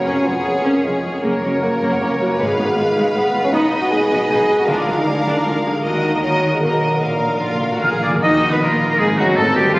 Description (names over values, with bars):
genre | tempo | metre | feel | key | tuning
classical | 156 BPM | 3/4 | straight | Eb minor from 3.5 s | A4 = 440 Hz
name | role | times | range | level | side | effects
rich symphonic violin section | melody | 0.0-9.8 s | F4 to F5 | -24 LUFS | equal | none
warm symphonic violin section | second line | 0.0-9.8 s | C4 to Cb5 | -24 LUFS | equal | none
mellow bassoon | accompaniment | 0.0-9.8 s | D3 to Ab4 | -20 LUFS | equal | none
concert harp | arpeggios | 0.0-9.8 s | E#2 to C#5 | -28 LUFS | left 1 dB | none
warm symphonic viola section | accompaniment | 0.1-9.8 s | F3 to Bb4 | -23 LUFS | equal | none
rich symphonic double bass section | bass | 0.1-9.8 s | E#1 to Eb2 | -28 LUFS | equal | none
warm symphonic cello section | bass | 0.1-9.8 s | E#2 to Eb3 | -26 LUFS | equal | none
timpani | percussion | 7.0-8.2 s | Bb2 | -26 LUFS | equal | none
bright oboe | second line | 7.8-9.8 s | F4 to F5 | -18 LUFS | equal | none
mellow concert flute | second line | 7.8-9.8 s | F5 to F6 | -23 LUFS | equal | none
mellow French horn section | sustained chords | 7.8-9.8 s | F3 to F4 | -25 LUFS | equal | none
clear clarinet | second line | 8.2-9.8 s | F4 to Eb5 | -23 LUFS | equal | none
room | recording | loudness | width
wet church reverb, RT60 3.4 s | recorded on a phone in the room, club reverb, compression | -15 LUFS | side -21 dB against mid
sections
0.0-8.2 A section; 8.2-9.8 B section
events
timpani fill 7.0-8.2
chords
0.1 C#7/E#; 1.2 F#; 2.4 Fdim/Ab; 3.5 Abm/Cb; 4.7 Bb7/D; 5.8 Ebm; 6.6 Bmaj7; 7.0 Bb; 8.2 Ebm